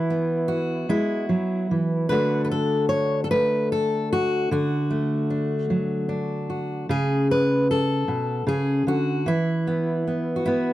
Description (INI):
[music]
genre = folk, solo fingerstyle acoustic guitar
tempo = 50 BPM (dotted quarters)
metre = 6/8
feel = straight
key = unclear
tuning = A4 = 440 Hz
[part]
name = fingerpicked steel-string acoustic guitar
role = solo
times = 0.0-10.7 s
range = B2 to C#5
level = -21 LUFS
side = equal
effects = none
[sound]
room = little or no reverb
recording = dry, close 1970s-style studio recording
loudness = -21 LUFS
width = side -15 dB against mid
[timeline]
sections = 0.0-10.7 A section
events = none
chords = 0.0 E; 2.1 D; 6.9 A/C#; 9.3 E5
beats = 0.89 | 2.10 3.31 | 4.52 5.71 | 6.89 8.08 | 9.26 10.45